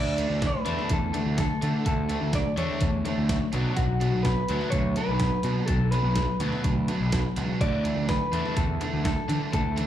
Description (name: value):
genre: indie rock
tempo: 125 BPM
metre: 4/4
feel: straight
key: D major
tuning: A4 = 440 Hz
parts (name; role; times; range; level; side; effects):
- electric guitar through a small old amp; melody; 0.0-9.9 s; F#4 to D5; -31 LUFS; left 1 dB; slapback echo, analog delay
- overdriven electric guitar; riff; 0.0-9.9 s; B2 to D4; -31 LUFS; left 5 dB; slapback echo
- fuzz picked electric bass; bass; 0.0-9.9 s; B1 to D3; -27 LUFS; right 1 dB; overdrive
- crunchy overdriven guitar; riff; 0.2-9.9 s; B2 to D4; -34 LUFS; right 7 dB; ensemble chorus, slapback echo, analog delay
- crisp 8-bit digital drum machine; drums; 0.2-9.9 s; hi-hat, kick drum, snare drum; -29 LUFS; equal; none
room: digital ambience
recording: live gig heard through the venue's PA, club reverb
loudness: -23 LUFS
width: side -11 dB against mid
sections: 0.0-9.9 A section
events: none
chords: 0.0 Dsus2; 3.5 Bm; 7.6 Dsus2